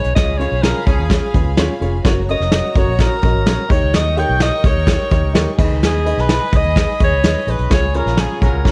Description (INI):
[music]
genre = uptempo 1960s-style soul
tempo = 127 BPM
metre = 4/4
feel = straight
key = unclear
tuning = A4 = 440 Hz
[part]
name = breathy alto saxophone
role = melody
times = 0.0-8.7 s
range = G#4 to G5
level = -23 LUFS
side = equal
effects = none
[part]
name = dark studio string section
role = second line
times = 0.0-8.7 s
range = C#4 to C#6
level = -31 LUFS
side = equal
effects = none
[part]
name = dark upright piano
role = accompaniment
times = 0.0-8.7 s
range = C#3 to D#5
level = -26 LUFS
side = equal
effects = none
[part]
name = vintage muted fingered electric bass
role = bass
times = 0.0-8.7 s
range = E#1 to D#2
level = -21 LUFS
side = equal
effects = none
[part]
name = vintage brush drum kit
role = drums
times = 0.0-8.7 s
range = crash cymbal, hi-hat, kick drum, snare drum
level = -19 LUFS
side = equal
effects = none
[part]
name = bright horn section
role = second line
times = 0.6-1.2, 8.2-8.7 s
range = E#3 to A#4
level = -33 LUFS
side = equal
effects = none
[part]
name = glockenspiel with rubber mallets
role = second line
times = 2.3-8.7 s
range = G#5 to G6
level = -33 LUFS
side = equal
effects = none
[sound]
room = light reverb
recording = dark, warm production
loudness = -16 LUFS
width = mono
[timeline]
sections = 0.0-8.7 A section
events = band accent 0.2-2.0, 7.7-8.7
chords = 0.2 C#; 2.0 F#; 3.7 D#7; 5.6 G#m; 7.7 C#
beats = | 0.16 0.63 1.10 1.57 | 2.05 2.52 2.99 3.46 | 3.93 4.41 4.88 5.35 | 5.82 6.29 6.77 7.24 | 7.71 8.18 8.66